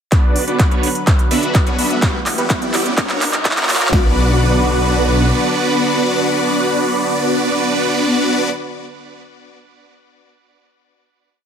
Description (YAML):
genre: EDM, festival progressive house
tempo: 126 BPM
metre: 4/4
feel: straight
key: B harmonic minor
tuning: A4 = 439 Hz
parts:
  - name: lush unison pad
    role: sustained chords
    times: 0.1-8.5 s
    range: C#3 to F#5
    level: -23 LUFS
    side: equal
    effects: chorus, sidechain pumping
  - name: big supersaw lead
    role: riff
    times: 0.1-8.5 s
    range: A#3 to F#5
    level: -17 LUFS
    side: equal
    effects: phaser, sidechain pumping, low-pass filter, ping-pong delay
  - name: detuned saw bass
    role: bass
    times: 0.1-5.3 s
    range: E1 to F#2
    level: -20 LUFS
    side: equal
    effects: tube saturation, sidechain pumping, high-pass filter
  - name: big-room dance drum kit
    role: drums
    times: 0.1-4.0 s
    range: kick drum, snare drum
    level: -15 LUFS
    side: equal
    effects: overdrive
  - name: big-room dance drum kit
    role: drums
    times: 0.1-4.0 s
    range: handclaps, hi-hat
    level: -20 LUFS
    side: right 1 dB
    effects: overdrive, high-pass filter on snare, high-pass filter on hats, high-pass filter on room
  - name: riser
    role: sound effects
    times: 1.4-3.9 s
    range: none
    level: -27 LUFS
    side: left 1 dB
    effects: none
room: moderate digital room reverb, RT60 1.2 s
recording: high-pass filter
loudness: -13 LUFS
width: side -8 dB against mid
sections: 0.1-3.9 build; 3.9-7.7 final chord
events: build-up 0.1-3.9; drum fill 0.1-3.9; filter sweep on supersaw synth 0.1-3.9; filter sweep on analog synth pad 0.1-3.9; filter sweep 0.1-3.9; riser 1.4-3.9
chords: 0.1 Bm; 2.0 Emadd9; 3.0 F#; 3.9 Bm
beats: | 0.12 0.59 1.07 1.55 | 2.02 2.50 2.98 3.45 | 3.93 4.40 4.88 5.36 | 5.83 6.31 6.79 7.26